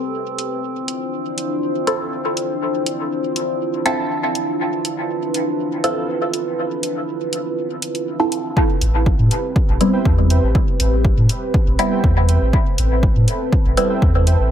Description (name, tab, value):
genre	dub techno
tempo	121 BPM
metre	4/4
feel	straight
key	A minor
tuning	A4 = 440 Hz
part	dark analog pad	sustained chords	0.0-14.5 s	C4 to C5	-23 LUFS	equal	chorus, sidechain pumping
part	drifting glass-harmonics texture	texture	0.0-8.6 s	C4	-31 LUFS	left 1 dB	chorus, built-in reverb, sidechain pumping
part	electronic hi-hat	drums	0.4-14.4 s	none	-26 LUFS	equal	overdrive, low-pass filter on hats
part	filtered dub chord stab	stabs	1.9-14.1 s	G3 to A4	-22 LUFS	right 1 dB	chorus, phaser, sidechain pumping, dub echo
part	electronic kick drum	drums	8.6-14.1 s	none	-18 LUFS	equal	overdrive
part	soft dub sub bass	bass	8.8-14.5 s	A1 to A2	-16 LUFS	equal	tube saturation, sidechain pumping
part	warbly lo-fi synth keys	riff	9.9-14.4 s	B4 to G5	-29 LUFS	right 4 dB	chorus, sidechain pumping, dub echo
room	light reverb, digital ambience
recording	echo-heavy mix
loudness	-16 LUFS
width	side -10 dB against mid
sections	0.0-8.6 A section; 8.6-14.5 B section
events	none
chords	0.0 Am9; 0.6 Dm9; 8.6 Am9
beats	0.14 | 0.63 1.13 1.62 2.12 | 2.62 3.11 3.61 4.10 | 4.60 5.10 5.59 6.09 | 6.58 7.08 7.58 8.07 | 8.57 9.06 9.56 10.05 | 10.55 11.05 11.54 12.04 | 12.53 13.03 13.53 14.02